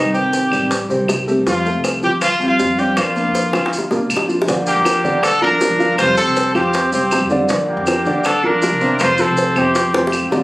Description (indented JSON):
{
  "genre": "latin, Cuban son and guajira",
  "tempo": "159 BPM",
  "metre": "4/4",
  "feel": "straight",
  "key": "Bb major",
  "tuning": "A4 = 439 Hz",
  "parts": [
    { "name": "warm trumpet", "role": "melody", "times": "0.0-10.3 s", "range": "Eb4 to C5", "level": "-18 LUFS", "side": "equal", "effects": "none" },
    { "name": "nylon-string guitar", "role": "accompaniment", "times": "0.0-10.4 s", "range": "C3 to G4", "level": "-21 LUFS", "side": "equal", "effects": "none" },
    { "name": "dark baby grand piano", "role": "arpeggios", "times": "0.0-10.4 s", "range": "C3 to F5", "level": "-21 LUFS", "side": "equal", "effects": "none" },
    { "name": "upright bass", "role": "bass", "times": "0.0-10.4 s", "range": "F1 to Bb2", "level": "-29 LUFS", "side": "equal", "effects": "none" },
    { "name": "bongos", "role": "percussion", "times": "0.1-10.4 s", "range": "none", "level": "-22 LUFS", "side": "left 1 dB", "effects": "none" },
    { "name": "maracas", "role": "percussion", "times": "0.1-10.4 s", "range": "none", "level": "-30 LUFS", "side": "equal", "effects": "none" },
    { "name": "claves", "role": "percussion", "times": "0.5-10.3 s", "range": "none", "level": "-25 LUFS", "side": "equal", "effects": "none" },
    { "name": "growling trumpet", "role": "second line", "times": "4.7-10.3 s", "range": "Bb3 to F4", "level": "-22 LUFS", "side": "right 1 dB", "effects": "none" }
  ],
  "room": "moderate studio reverb, RT60 0.5 s",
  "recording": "recorded on a phone in the room, studio ambience",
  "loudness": "-14 LUFS",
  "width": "side -20 dB against mid",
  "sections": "0.0-4.5 A section; 4.5-10.4 B section",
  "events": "drum fill 3.5-4.5, 9.9-10.4",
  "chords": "0.0 Cm; 1.5 Fadd9; 3.0 Bb; 6.0 Fsus2; 7.5 Bb; 9.0 F"
}